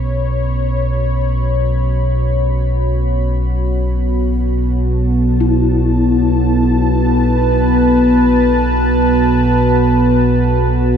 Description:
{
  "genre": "dark ambient drone",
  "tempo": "free time",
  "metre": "none",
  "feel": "none",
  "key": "unclear",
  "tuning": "A4 = 438 Hz",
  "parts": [
    { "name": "dark analog pad", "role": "sustained chords", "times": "0.0-11.0 s", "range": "B3 to B5", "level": "-16 LUFS", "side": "equal", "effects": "chorus" },
    { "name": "deep rumbling drone", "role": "drone", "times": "0.0-11.0 s", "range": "B1 to B2", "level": "-15 LUFS", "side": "equal", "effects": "built-in reverb" },
    { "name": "gamelan-type bronze metallophone", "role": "arpeggios", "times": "5.4-11.0 s", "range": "E4", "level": "-23 LUFS", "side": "left 5 dB", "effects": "ping-pong delay" }
  ],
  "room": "wet cathedral reverb, RT60 5.4 s",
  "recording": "dark, warm production",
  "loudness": "-12 LUFS",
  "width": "side -8 dB against mid",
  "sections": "0.0-11.0 A section",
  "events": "fade-in on analog synth pad 0.0-11.0",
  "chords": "0.0 B5",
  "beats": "free time"
}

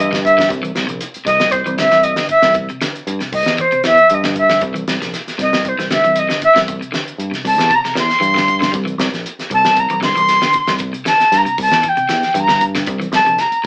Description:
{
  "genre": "afrobeat",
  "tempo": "116 BPM",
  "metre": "4/4",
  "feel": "swing 53% on 16ths",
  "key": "C mixolydian",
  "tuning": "A4 = 437 Hz",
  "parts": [
    { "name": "jazz flute", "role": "melody", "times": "0.0-13.7 s", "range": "C5 to C6", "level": "-12 LUFS", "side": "equal", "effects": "none" },
    { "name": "electric guitar at the edge of break-up", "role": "arpeggios", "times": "0.0-13.7 s", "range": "C3 to G3", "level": "-26 LUFS", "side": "left 1 dB", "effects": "tremolo" },
    { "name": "fingered electric bass", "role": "bass", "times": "0.0-13.7 s", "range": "Bb1 to G2", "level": "-22 LUFS", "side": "equal", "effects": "none" },
    { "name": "cloth-damped thuddy drum kit", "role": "drums", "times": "0.1-13.7 s", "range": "hi-hat, kick drum, snare drum", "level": "-21 LUFS", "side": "equal", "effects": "none" }
  ],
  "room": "moderate studio reverb, RT60 0.6 s",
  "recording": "band playing live in one room, AM radio sound",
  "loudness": "-12 LUFS",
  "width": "side -25 dB against mid",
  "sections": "0.0-13.7 A section",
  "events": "flute solo 0.0-13.7",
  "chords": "0.0 C",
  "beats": "| 0.50 1.01 1.53 2.04 | 2.56 3.07 3.59 4.10 | 4.62 5.13 5.65 6.16 | 6.68 7.19 7.71 8.23 | 8.74 9.26 9.77 10.29 | 10.80 11.32 11.84 12.35 | 12.87 13.39"
}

